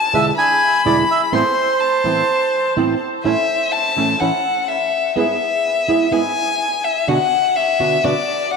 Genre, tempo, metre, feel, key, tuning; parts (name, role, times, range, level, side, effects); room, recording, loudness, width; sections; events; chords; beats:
tango; 125 BPM; 4/4; rubato; A harmonic minor, A major from 3.2 s; A4 = 440 Hz
warm violin; second line; 0.0-8.6 s; D5 to C6; -18 LUFS; left 5 dB; diffuse ambient delay
bandoneon; melody; 0.1-2.7 s; C5 to G#5; -19 LUFS; right 2 dB; diffuse ambient delay
nylon-string guitar; accompaniment; 0.1-8.1 s; E2 to F#4; -21 LUFS; right 4 dB; lush chorus
bandoneon; stabs; 0.1-8.2 s; G#2 to B4; -30 LUFS; right 5 dB; diffuse ambient delay
wet plate reverb, RT60 2.6 s; dreamy mix soaked in reverb; -15 LUFS; side -5 dB against mid
0.0-3.2 A section; 3.2-8.6 B section
violin solo 3.2-8.6
0.4 E7; 1.3 Amadd9; 3.2 A; 5.2 E/G#; 7.1 Bm
0.37 0.85 | 1.33 1.81 2.29 2.77 | 3.25 3.73 4.21 4.69 | 5.17 5.65 6.12 6.60 | 7.08 7.56 8.04 8.51